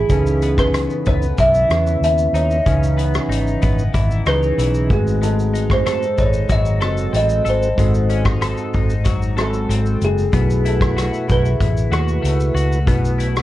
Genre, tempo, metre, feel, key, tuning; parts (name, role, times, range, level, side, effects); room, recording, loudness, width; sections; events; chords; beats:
indie pop, bedroom pop; 94 BPM; 4/4; straight; C# minor; A4 = 440 Hz
kalimba; melody; 0.0-13.4 s; G#4 to E5; -21 LUFS; equal; lush chorus, slapback echo
twelve-string electric guitar; accompaniment; 0.0-13.4 s; G#2 to A4; -25 LUFS; left 5 dB; analog chorus, warbly pitch drift
vintage muted fingered electric bass; bass; 0.0-13.4 s; F#1 to E2; -19 LUFS; equal
mellow tonewheel organ; accompaniment; 0.1-13.4 s; E3 to B4; -25 LUFS; right 3 dB; slow rotary speaker, plate reverb
loose indie drum kit; drums; 0.1-13.4 s; hi-hat, kick drum, rim click, shaker; -21 LUFS; equal
light reverb; worn, warbling old tape, cassette tape, warbly pitch drift; -15 LUFS; side -14 dB against mid
0.0-13.4 A section
0.1 C#m9; 4.9 G#7b9; 10.3 B7sus4
| 0.10 0.74 1.38 2.02 | 2.66 3.30 3.94 4.58 | 5.22 5.86 6.50 7.13 | 7.77 8.41 9.05 9.69 | 10.33 10.97 11.61 12.24 | 12.88